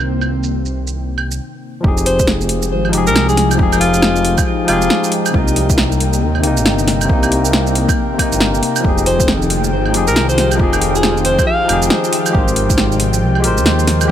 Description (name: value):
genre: future garage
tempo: 137 BPM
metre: 4/4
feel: swing 62% on 16ths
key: F minor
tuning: A4 = 439 Hz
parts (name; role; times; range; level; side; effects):
- barky tine electric piano; accompaniment; 0.0-14.1 s; C3 to C5; -20 LUFS; left 2 dB; overdrive, sidechain pumping, tape echo
- airy breathy pad; sustained chords; 0.0-14.1 s; C3 to G5; -21 LUFS; left 2 dB; chorus, sidechain pumping
- dark detuned saw bass; bass; 0.0-14.1 s; F1 to Eb2; -18 LUFS; equal; sidechain pumping
- deep house drum kit; drums; 0.2-14.1 s; claves, hi-hat, shaker, snare drum; -18 LUFS; right 1 dB; overdrive, studio reverb
- electronic kick drum; drums; 1.8-12.8 s; none; -17 LUFS; equal; overdrive, studio reverb
- clear alto saxophone; melody; 2.1-5.1, 9.1-11.8 s; F4 to F5; -19 LUFS; equal; digital delay
room: light reverb, digital ambience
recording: low-pass filter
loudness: -12 LUFS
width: side -10 dB against mid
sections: 0.0-1.8 A section; 1.8-14.1 B section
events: stop 1.4-1.8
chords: 0.0 Cm7; 1.8 Fm9; 5.3 Cm7; 8.8 Fm9; 12.3 Abmaj9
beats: | 0.09 0.52 0.96 1.40 | 1.84 2.28 2.71 3.15 | 3.59 4.03 4.47 4.90 | 5.34 5.78 6.22 6.66 | 7.09 7.53 7.97 8.41 | 8.85 9.28 9.72 10.16 | 10.60 11.04 11.47 11.91 | 12.35 12.79 13.22 13.66 | 14.10